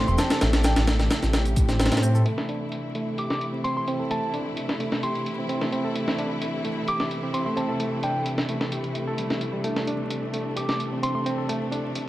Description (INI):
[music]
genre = breakbeat, breaks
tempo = 130 BPM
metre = 4/4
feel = straight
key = A minor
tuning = A4 = 442 Hz
[part]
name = soft synth bell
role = melody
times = 0.0-11.6 s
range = G5 to D6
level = -31 LUFS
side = equal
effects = chorus, phaser, small speaker sound, digital delay
[part]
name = clear studio string section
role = sustained chords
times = 0.0-12.1 s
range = C3 to G4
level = -31 LUFS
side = left 1 dB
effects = sidechain pumping
[part]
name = barky reed electric piano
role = riff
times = 0.0-12.1 s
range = G3 to A4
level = -29 LUFS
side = right 1 dB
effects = overdrive, vintage 12-bit sampler grit, low-pass filter, digital delay
[part]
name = phased detuned saw bass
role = bass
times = 0.0-2.2 s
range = E1 to A2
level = -22 LUFS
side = equal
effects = phaser
[part]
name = shaker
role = drums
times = 0.1-2.2 s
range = none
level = -42 LUFS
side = equal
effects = overdrive, low-pass filter on perc
[part]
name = breakbeat sampler-style drum kit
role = drums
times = 0.2-12.1 s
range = hi-hat, kick drum, snare drum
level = -27 LUFS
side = equal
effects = low-pass filter on hats, low-pass filter on kick, low-pass filter on snare
[sound]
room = light reverb, digital ambience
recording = vinyl crackle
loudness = -23 LUFS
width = side -15 dB against mid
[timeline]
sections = 0.0-2.3 A section; 2.3-12.1 B section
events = filter sweep on reed electric piano 2.3-12.1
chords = 0.0 Am